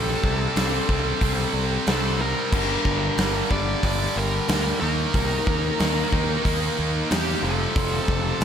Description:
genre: hard rock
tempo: 92 BPM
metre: 4/4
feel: straight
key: G minor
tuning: A4 = 439 Hz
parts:
  - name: dark smooth lead guitar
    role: melody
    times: 0.0-8.4 s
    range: G4 to D5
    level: -28 LUFS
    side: left 1 dB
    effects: overdrive
  - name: distorted electric guitar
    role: riff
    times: 0.0-8.4 s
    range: F2 to Eb4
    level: -30 LUFS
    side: left 13 dB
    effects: overdrive
  - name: heavy high-gain guitar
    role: riff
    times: 0.0-8.4 s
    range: F2 to Eb4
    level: -28 LUFS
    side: right 15 dB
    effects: distortion
  - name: heavy high-gain guitar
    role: riff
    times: 0.0-8.4 s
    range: F2 to Eb4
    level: -31 LUFS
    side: left 1 dB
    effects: distortion
  - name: growling fingered electric bass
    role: bass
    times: 0.0-8.4 s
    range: F1 to E2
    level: -27 LUFS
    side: equal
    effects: overdrive
  - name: big rock drum kit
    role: drums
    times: 0.2-8.4 s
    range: crash cymbal, hi-hat, kick drum, snare drum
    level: -26 LUFS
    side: equal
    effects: none
room: light reverb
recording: none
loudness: -20 LUFS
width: side -8 dB against mid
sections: 0.0-8.4 A section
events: none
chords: 0.0 C5; 2.5 Gm; 4.8 Eb5; 7.4 F

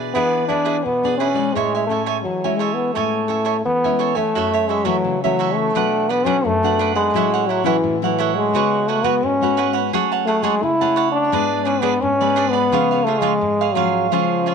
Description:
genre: samba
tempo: 86 BPM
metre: 4/4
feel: straight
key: A major, F# minor from 4.4 s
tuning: A4 = 439 Hz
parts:
  - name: cavaquinho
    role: accompaniment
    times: 0.0-14.5 s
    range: D4 to A5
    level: -22 LUFS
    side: right 13 dB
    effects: none
  - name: nylon-string guitar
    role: accompaniment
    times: 0.0-14.5 s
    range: F#2 to A4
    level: -24 LUFS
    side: left 13 dB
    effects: none
  - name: clear trombone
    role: melody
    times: 0.1-14.5 s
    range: E3 to E4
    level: -19 LUFS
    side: equal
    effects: none
room: moderate plate reverb, RT60 2.9 s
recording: 1960s-style stereo with parts hard left and right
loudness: -16 LUFS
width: side -6 dB against mid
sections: 0.0-4.4 A section; 4.4-14.5 B section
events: none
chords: 0.0 E7; 1.6 Amaj7; 4.4 F#m7; 5.8 Bm; 7.1 F#m7/A; 8.5 C#7sus4; 9.9 F#madd9; 11.3 G#dim; 12.7 C#

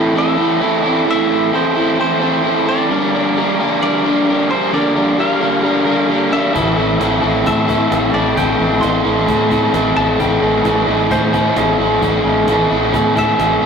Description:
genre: rock, shoegaze and dream pop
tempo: 131 BPM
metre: 4/4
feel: straight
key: unclear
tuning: A4 = 440 Hz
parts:
  - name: direct-recorded clean electric guitar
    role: melody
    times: 0.0-13.7 s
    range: C5 to C6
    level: -23 LUFS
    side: equal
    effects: none
  - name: crunchy overdriven guitar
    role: riff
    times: 0.0-13.7 s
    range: G2 to Bb4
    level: -13 LUFS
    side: equal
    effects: none
  - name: fingered electric bass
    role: bass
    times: 6.6-13.7 s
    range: A1 to A2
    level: -21 LUFS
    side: left 1 dB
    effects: none
  - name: cajon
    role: drums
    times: 6.6-13.5 s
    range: none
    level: -28 LUFS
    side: equal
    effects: none
room: wet studio reverb, RT60 0.6 s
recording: rough rehearsal-room recording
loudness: -13 LUFS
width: side -6 dB against mid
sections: 0.0-13.7 A section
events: none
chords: 0.0 Am; 2.9 Gm7; 6.6 Am

